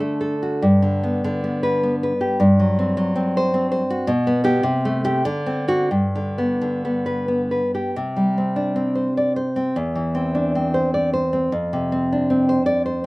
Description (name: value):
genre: romantic piece for solo classical guitar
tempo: 87-111 BPM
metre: 3/4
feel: rubato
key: G major, C major from 7.9 s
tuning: A4 = 437 Hz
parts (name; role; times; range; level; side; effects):
- nylon-string guitar; solo; 0.0-13.1 s; E2 to D5; -18 LUFS; equal; none
room: light reverb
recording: recorded outdoors, with no room sound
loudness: -18 LUFS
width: side -22 dB against mid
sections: 0.0-7.9 A section; 7.9-13.1 B section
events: none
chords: 0.0 D; 0.6 G; 2.4 Gsus4; 4.1 G/B; 4.7 Am7/C; 5.3 D7; 5.9 G; 7.9 C5; 9.8 C/E; 11.5 F5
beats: 0.01 | 0.64 1.25 1.84 | 2.41 2.98 3.55 | 4.10 4.66 5.25 | 5.91 6.60 7.27 | 7.93 8.55 9.15 | 9.75 10.35 10.93 | 11.51 12.10 12.66